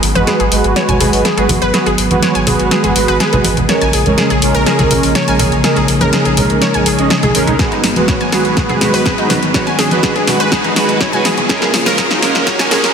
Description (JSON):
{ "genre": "progressive house", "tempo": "123 BPM", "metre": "4/4", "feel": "straight", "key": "G# dorian", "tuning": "A4 = 440 Hz", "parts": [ { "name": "warm analog pad", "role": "sustained chords", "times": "0.0-12.9 s", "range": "C#3 to F#4", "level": "-20 LUFS", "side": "left 2 dB", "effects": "chorus, sidechain pumping" }, { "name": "round analog bass", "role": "bass", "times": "0.0-12.9 s", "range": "G#1 to A#1", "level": "-22 LUFS", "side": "equal", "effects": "tube saturation, sidechain pumping" }, { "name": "house drum kit", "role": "drums", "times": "0.0-12.9 s", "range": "hi-hat, snare drum", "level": "-17 LUFS", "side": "left 1 dB", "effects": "none" }, { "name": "riser", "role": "sound effects", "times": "5.5-12.9 s", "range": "none", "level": "-25 LUFS", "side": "equal", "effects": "none" }, { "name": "wide unison pluck", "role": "arpeggios", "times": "0.2-12.8 s", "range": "D#4 to G#5", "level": "-18 LUFS", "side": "left 1 dB", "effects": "sidechain pumping, dub echo" }, { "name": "soft supersaw", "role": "stabs", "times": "0.2-12.9 s", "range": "G#3 to D#5", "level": "-16 LUFS", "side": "right 2 dB", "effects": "cassette tape, sidechain pumping, low-pass filter, dub echo" }, { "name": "congas and woodblock", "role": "percussion", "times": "0.2-12.9 s", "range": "none", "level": "-21 LUFS", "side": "right 2 dB", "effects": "sidechain pumping on perc" }, { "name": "electronic kick drum", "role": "drums", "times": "7.6-12.6 s", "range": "none", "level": "-20 LUFS", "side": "equal", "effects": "none" } ], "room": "wet lush hall reverb, RT60 2.1 s", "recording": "dense, heavily limited modern master, high-pass filter", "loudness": "-10 LUFS", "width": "side -7 dB against mid", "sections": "0.0-12.9 A section", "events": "build-up 0.0-12.9; drum fill 0.0-12.9; filter sweep on supersaw synth 0.0-12.9; filter sweep on analog synth pad 0.0-12.9; filter sweep 0.0-12.9", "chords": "0.0 G#m7; 3.7 A#m7; 7.6 G#m7; 11.5 A#m7" }